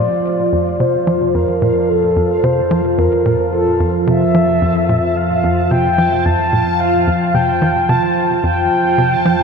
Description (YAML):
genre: ambient, sequencer-driven space music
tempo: 110 BPM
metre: 4/4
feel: straight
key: F major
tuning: A4 = 440 Hz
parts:
  - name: mellow horn-like synth lead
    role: melody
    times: 0.0-9.4 s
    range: A4 to A5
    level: -16 LUFS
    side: equal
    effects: chorus, tape echo
  - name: sweeping resonant pad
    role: sustained chords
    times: 0.0-9.4 s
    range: F3 to A5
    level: -18 LUFS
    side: equal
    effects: chorus
  - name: tight sequencer bass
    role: riff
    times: 0.0-9.4 s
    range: F2 to F3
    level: -19 LUFS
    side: equal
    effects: vintage 12-bit sampler grit, tape echo
  - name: analog drone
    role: bass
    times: 1.1-9.4 s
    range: F2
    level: -23 LUFS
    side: equal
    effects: chorus
  - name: bubbling stepped-filter texture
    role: texture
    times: 0.0-9.4 s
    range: F4 to A5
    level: -30 LUFS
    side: right 3 dB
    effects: chorus, built-in reverb
room: wet huge ambient reverb, RT60 7.8 s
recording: in a vast, echoing space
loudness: -12 LUFS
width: side -5 dB against mid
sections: 0.0-9.4 A section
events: fade-in on synth texture 0.0-9.4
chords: 0.0 F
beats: 0.25 0.80 1.34 | 1.89 2.44 2.98 3.53 | 4.07 4.62 5.16 5.71 | 6.25 6.80 7.34 7.89 | 8.44 8.98